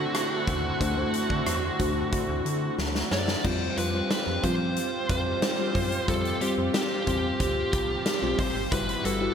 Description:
1980s-style pop; 91 BPM; 4/4; straight; A4 = 440 Hz
high-gain lead guitar; melody; 0.0-9.3 s; F#4 to D5; -30 LUFS; right 1 dB; distortion, shimmer reverb
mellow FM electric piano; accompaniment; 0.0-9.3 s; G2 to C5; -30 LUFS; left 2 dB; chorus, shimmer reverb
lush unison pad; sustained chords; 0.0-9.3 s; D3 to F#5; -34 LUFS; right 1 dB; chorus, shimmer reverb
slap-like FM bass; bass; 0.0-9.3 s; G1 to F3; -32 LUFS; equal
huge arena drum kit; drums; 0.1-9.2 s; crash cymbal, hi-hat, kick drum, rim click, snare drum; -30 LUFS; equal; gated reverb
moderate lush hall reverb, RT60 2.4 s; bright 1980s-style digital production; -24 LUFS; side -7 dB against mid
0.0-3.4 A section; 3.4-9.3 B section
drum fill 2.8-3.4
0.0 D7; 3.4 Fsus2; 8.7 Emadd9/G
0.15 | 0.81 1.47 2.13 2.79 | 3.45 4.11 4.76 5.42 | 6.08 6.74 7.40 8.06 | 8.72

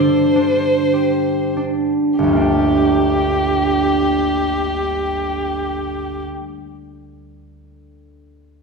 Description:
classical, impressionist duo for violin and harp; 51 BPM; 4/4; rubato; G minor; A4 = 440 Hz
rich violin; melody; 0.0-6.2 s; G4 to C5; -20 LUFS; left 1 dB
concert harp; accompaniment; 0.0-6.5 s; G1 to G4; -17 LUFS; right 1 dB
wet recital hall reverb, RT60 1.7 s; heard from further back in the room; -15 LUFS; side -4 dB against mid
0.0-2.2 A section; 2.2-6.9 B section
slowing down 0.0-2.2
0.0 Csus2/G; 2.2 Gm
0.93 | 2.20 3.38 4.55 5.70

